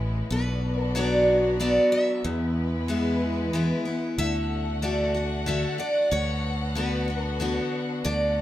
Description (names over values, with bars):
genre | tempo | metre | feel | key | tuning
country | 93 BPM | 3/4 | straight | unclear | A4 = 440 Hz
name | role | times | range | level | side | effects
picked steel-string acoustic guitar | accompaniment | 0.0-8.4 s | E2 to F#4 | -28 LUFS | left 2 dB | none
rich studio violin section | sustained chords | 0.0-8.4 s | G#3 to F#5 | -34 LUFS | left 2 dB | none
fretless electric bass | bass | 0.0-8.4 s | A1 to E2 | -28 LUFS | equal | none
picked steel-string acoustic guitar | melody | 0.3-8.4 s | B4 to E5 | -26 LUFS | right 1 dB | none
room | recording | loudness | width
moderate large studio reverb, RT60 0.9 s | minimal, uncompressed stereo recording | -23 LUFS | side -13 dB against mid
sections
0.0-8.4 A section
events
none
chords
0.3 Bm; 2.2 E; 4.2 D; 6.1 Bm/D